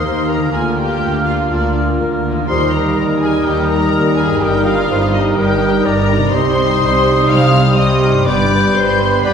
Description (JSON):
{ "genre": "classical, dramatic, fast romantic movement for symphony orchestra", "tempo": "124 BPM", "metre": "4/4", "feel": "rubato", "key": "Eb major", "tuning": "A4 = 440 Hz", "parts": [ { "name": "rich symphonic violin section", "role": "melody", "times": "0.0-9.3 s", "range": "D5 to F6", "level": "-22 LUFS", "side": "left 3 dB", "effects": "none" }, { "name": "bright silver concert flute", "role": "second line", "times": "0.0-9.3 s", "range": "Eb6 to G6", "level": "-23 LUFS", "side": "left 4 dB", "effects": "none" }, { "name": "mellow clarinet", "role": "second line", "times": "0.0-9.3 s", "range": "F4 to D5", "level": "-23 LUFS", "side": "left 3 dB", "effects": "none" }, { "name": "warm cor anglais", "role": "second line", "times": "0.0-9.3 s", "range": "Bb4 to C5", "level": "-24 LUFS", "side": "right 2 dB", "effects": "none" }, { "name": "warm symphonic violin section", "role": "second line", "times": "0.0-9.3 s", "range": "D4 to F5", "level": "-23 LUFS", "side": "left 2 dB", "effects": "none" }, { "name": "mellow bassoon", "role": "accompaniment", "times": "0.0-9.3 s", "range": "G3 to Bb3", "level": "-21 LUFS", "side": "right 4 dB", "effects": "none" }, { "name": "rich studio viola section", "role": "accompaniment", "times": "0.0-9.3 s", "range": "G3 to F4", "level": "-21 LUFS", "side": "right 1 dB", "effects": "none" }, { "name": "warm French horn section", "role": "sustained chords", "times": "0.0-9.3 s", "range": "G3 to F4", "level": "-23 LUFS", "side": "left 2 dB", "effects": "none" }, { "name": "concert harp", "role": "arpeggios", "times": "0.0-9.3 s", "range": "G2 to Bb4", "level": "-23 LUFS", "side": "left 2 dB", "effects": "none" }, { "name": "warm studio cello section", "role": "bass", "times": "0.0-9.3 s", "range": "D2 to C3", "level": "-21 LUFS", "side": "right 1 dB", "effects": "none" }, { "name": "rich symphonic double bass section", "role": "bass", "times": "0.1-9.3 s", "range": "G1 to Eb2", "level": "-21 LUFS", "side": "right 2 dB", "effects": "none" } ], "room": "wet scoring stage reverb, RT60 1.7 s", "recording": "heard from further back in the room, faint mains hum", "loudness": "-12 LUFS", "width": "side -7 dB against mid", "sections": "0.0-9.3 A section", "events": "none", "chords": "0.0 Eb; 0.5 Bb/D; 2.5 Eb; 4.4 Eb/G; 6.3 Cm; 8.3 G", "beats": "0.05 | 0.54 1.03 1.52 2.00 | 2.49 2.97 3.46 3.94 | 4.43 4.91 5.38 5.86 | 6.34 6.82 7.30 7.79 | 8.27 8.76 9.24" }